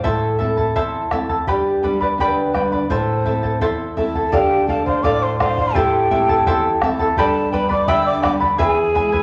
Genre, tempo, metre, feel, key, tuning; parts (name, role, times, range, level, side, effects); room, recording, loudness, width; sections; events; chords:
andean folk, Andean ensemble; 84 BPM; 2/4; straight; A minor; A4 = 440 Hz
mellow hollow polished pan flute; melody; 0.0-9.2 s; G4 to E5; -24 LUFS; equal
charango; accompaniment; 0.0-9.2 s; E4 to B5; -22 LUFS; equal
nylon-string guitar; accompaniment; 0.0-9.2 s; E2 to F4; -27 LUFS; equal
bombo; percussion; 0.0-9.2 s; -28 LUFS; equal
breathy quena; second line; 4.3-9.2 s; G5 to E6; -23 LUFS; equal
wet large studio reverb, RT60 1.2 s; -18 LUFS; mono
0.0-4.3 A section; 4.3-9.2 A section
0.0 Am; 1.5 G; 2.9 Am; 4.3 Dm; 5.8 Am; 7.2 G; 8.6 E